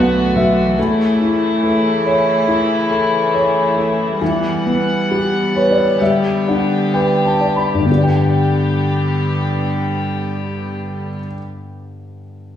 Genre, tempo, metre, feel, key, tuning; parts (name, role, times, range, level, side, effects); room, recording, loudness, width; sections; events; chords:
pop; 62-71 BPM; 4/4; straight; G lydian; A4 = 441 Hz
warm concert grand piano; accompaniment; 0.0-12.6 s; G2 to B5; -16 LUFS; left 1 dB
warm chamber string section; sustained chords; 0.0-11.2 s; C#3 to F#5; -18 LUFS; equal
barky tine electric piano; bass; 0.0-0.7 s; B1; -19 LUFS; equal
wet recital hall reverb, RT60 1.4 s; recorded in a church or concert hall, studio reverb; -14 LUFS; side -10 dB against mid
0.0-7.9 A section; 7.9-11.7 B section
grand piano fill 0.0-0.8, 5.1-7.9; slowing down 0.8-7.9
0.0 Bm7; 0.8 A; 4.2 Emadd9; 6.0 G